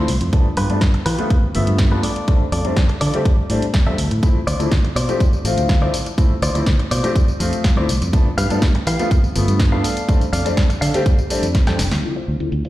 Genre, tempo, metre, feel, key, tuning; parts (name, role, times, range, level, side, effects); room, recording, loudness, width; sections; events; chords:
filtered disco house; 123 BPM; 4/4; straight; D dorian; A4 = 439 Hz
clear baby grand piano; accompaniment; 0.0-12.5 s; F3 to E5; -23 LUFS; left 2 dB; phaser, vintage 12-bit sampler grit, sidechain pumping, low-pass filter
direct-recorded clean electric guitar; riff; 0.0-12.7 s; F4 to G5; -26 LUFS; left 1 dB; spring reverb, sidechain pumping, low-pass filter
fingered electric bass; bass; 0.0-12.6 s; F1 to E3; -20 LUFS; equal; sidechain pumping, low-pass filter
punchy analog drum machine; drums; 0.1-12.7 s; hi-hat, snare drum, tambourine; -26 LUFS; equal; low-pass filter on snare, sidechain pumping on hats, low-pass filter on hats, sidechain pumping on cymbals, low-pass filter on cymbals, sidechain pumping on perc, low-pass filter on perc, low-pass filter on room
electronic kick drum; drums; 0.3-11.6 s; -16 LUFS; equal
light reverb, digital ambience; played on a big sound system in a bare room, large studio reverb; -15 LUFS; side -15 dB against mid
0.0-12.0 A section
filter sweep 0.0-12.0; drum fill 11.5-12.0
0.3 G7; 2.0 F6; 4.2 Dm7; 8.1 G7; 9.8 F6; 12.0 Dm7